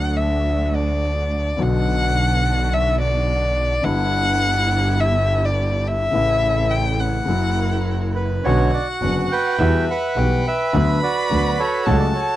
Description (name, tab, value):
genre	tango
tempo	105 BPM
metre	4/4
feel	rubato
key	D major, B minor from 8.4 s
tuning	A4 = 439 Hz
part	warm violin	second line	0.0-12.4 s	D5 to B5	-22 LUFS	left 2 dB	none
part	warm grand piano	accompaniment	0.0-12.1 s	F#1 to F#4	-23 LUFS	left 3 dB	none
part	dark symphonic string section	stabs	0.0-12.1 s	A3 to B4	-31 LUFS	right 6 dB	none
part	clear double bass	bass	0.0-12.1 s	F#1 to E2	-21 LUFS	right 1 dB	none
part	bandoneon	melody	8.2-12.4 s	F#4 to G5	-21 LUFS	right 4 dB	none
room	light reverb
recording	dry, close 1970s-style studio recording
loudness	-17 LUFS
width	side -14 dB against mid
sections	0.0-8.4 A section; 8.4-12.4 B section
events	violin solo 0.0-8.4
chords	0.0 D; 1.6 Bm; 3.8 G6; 6.1 A; 7.3 F#7; 8.4 Bmadd9; 9.6 Emadd9; 10.7 Bm/D